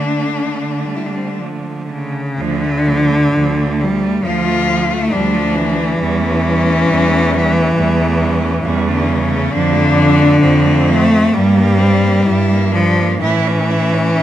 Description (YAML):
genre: classical, lyrical piece for cello ensemble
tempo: 67 BPM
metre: 4/4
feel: uneven beats, rubato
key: D minor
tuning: A4 = 440 Hz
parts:
  - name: rich cello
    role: melody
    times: 0.0-14.2 s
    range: A3 to F4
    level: -20 LUFS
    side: left 6 dB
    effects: none
  - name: clear cello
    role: second line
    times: 0.0-14.2 s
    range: F3 to E4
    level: -22 LUFS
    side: right 9 dB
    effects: none
  - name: clear cello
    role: accompaniment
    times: 0.0-14.2 s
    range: C#3 to A3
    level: -15 LUFS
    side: left 1 dB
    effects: none
  - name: rich cello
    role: bass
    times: 0.0-14.2 s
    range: D2 to D3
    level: -18 LUFS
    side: right 2 dB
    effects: none
room: moderate recital hall reverb, RT60 1.8 s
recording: close, detailed microphones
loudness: -12 LUFS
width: side -12 dB against mid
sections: 0.0-2.4 A section; 2.4-14.2 B section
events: none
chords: 0.0 Dm; 6.0 A7/E; 9.5 Dm/F; 11.3 Gmadd11; 13.2 A